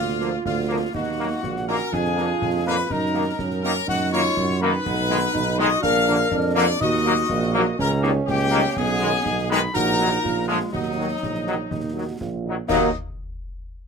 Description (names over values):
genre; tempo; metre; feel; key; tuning
military-style march for wind band; 123 BPM; 2/4; straight; Eb minor; A4 = 440 Hz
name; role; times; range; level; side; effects
clear trumpet section; melody; 0.0-12.9 s; Eb4 to F5; -27 LUFS; left 4 dB; none
dark woodwind section; second line; 0.0-12.9 s; Gb3 to Eb5; -30 LUFS; left 2 dB; none
warm euphonium; second line; 0.0-12.7 s; Bb3 to Gb4; -28 LUFS; right 7 dB; none
wooden piccolo; second line; 0.0-13.0 s; Eb5 to F6; -29 LUFS; left 5 dB; none
warm tuba; bass; 0.0-12.9 s; Bb1 to Gb2; -26 LUFS; right 4 dB; none
concert snare drum, concert bass drum and clash cymbals; drums; 0.1-13.0 s; none; -34 LUFS; left 2 dB; none
dark French horn section; accompaniment; 0.2-12.9 s; Eb3 to F4; -27 LUFS; left 3 dB; none
clear trombone section; sustained chords; 0.2-12.9 s; D3 to Bb3; -25 LUFS; left 2 dB; none
room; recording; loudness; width
light reverb; close, detailed microphones; -20 LUFS; side -5 dB against mid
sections
0.0-12.7 A section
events
none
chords
0.0 Bb/D; 0.9 Ebm; 1.9 Bb7/F; 2.9 Ebm/Gb; 4.9 Abm/Cb; 5.8 Bb; 6.8 Ebm; 7.8 Eb7/Db; 8.8 Abm/Cb; 9.8 Ebm/Bb; 10.2 Bb7; 10.7 Ebm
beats
0.45 | 0.94 1.43 | 1.92 2.41 | 2.90 3.39 | 3.88 4.36 | 4.85 5.34 | 5.83 6.32 | 6.81 7.30 | 7.79 8.28 | 8.77 9.26 | 9.75 10.24 | 10.73 11.22 | 11.71 12.20 | 12.69